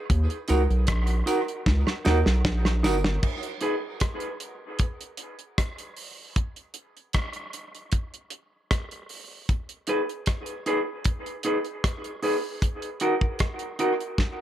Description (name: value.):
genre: dub reggae.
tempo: 77 BPM.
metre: 4/4.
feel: straight.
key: G# minor.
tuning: A4 = 442 Hz.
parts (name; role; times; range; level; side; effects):
soft dub sub bass; bass; 0.1-3.2 s; G1 to D#2; -23 LUFS; equal; none.
damped 70s drum kit; drums; 0.1-14.4 s; crash cymbal, hi-hat, kick drum, rim click, snare drum; -27 LUFS; equal; none.
semi-hollow electric guitar; accompaniment; 0.5-3.8, 9.9-13.9 s; D#4 to B4; -28 LUFS; right 1 dB; dub echo.
tambourine and woodblock; percussion; 0.5-3.0 s; none; -41 LUFS; right 7 dB; dub echo.
room: light reverb, studio reverb.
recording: echo-heavy mix.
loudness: -24 LUFS.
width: side -12 dB against mid.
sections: 0.0-3.2 A section; 3.2-14.4 B section.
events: drum fill 1.7-3.2, 14.2; break 3.2-9.5.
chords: 0.1 D#m; 3.2 G#m; 6.4 N.C.; 9.5 G#m; 12.6 D#m.